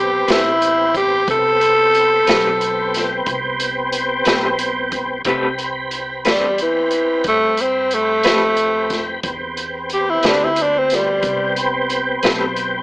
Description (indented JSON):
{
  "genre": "slow blues",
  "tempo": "60 BPM (dotted quarters)",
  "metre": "12/8",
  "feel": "straight",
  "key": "A minor",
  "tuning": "A4 = 440 Hz",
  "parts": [
    { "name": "growling tenor saxophone", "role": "melody", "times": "0.0-11.6 s", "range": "E3 to A4", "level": "-15 LUFS", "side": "equal", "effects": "none" },
    { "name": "tonewheel organ", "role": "sustained chords", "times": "0.0-12.8 s", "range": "B3 to B4", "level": "-22 LUFS", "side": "equal", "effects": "chorus vibrato, slow rotary speaker" },
    { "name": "upright bass", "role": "bass", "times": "0.0-12.8 s", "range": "A1 to G2", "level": "-34 LUFS", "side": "equal", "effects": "none" },
    { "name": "electric guitar through a small old amp", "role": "accompaniment", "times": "0.3-12.4 s", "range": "A3 to B4", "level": "-19 LUFS", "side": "left 1 dB", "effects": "tremolo" },
    { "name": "vintage drum kit", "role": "drums", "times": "0.3-12.7 s", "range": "hi-hat, kick drum, snare drum", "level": "-21 LUFS", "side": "equal", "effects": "none" }
  ],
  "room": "light reverb, small room ambience",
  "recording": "AM radio sound",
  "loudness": "-15 LUFS",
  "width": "side -23 dB against mid",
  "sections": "0.0-5.3 A section; 5.3-12.8 B section",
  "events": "tenor saxophone solo 5.3-12.8",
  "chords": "0.0 Am9"
}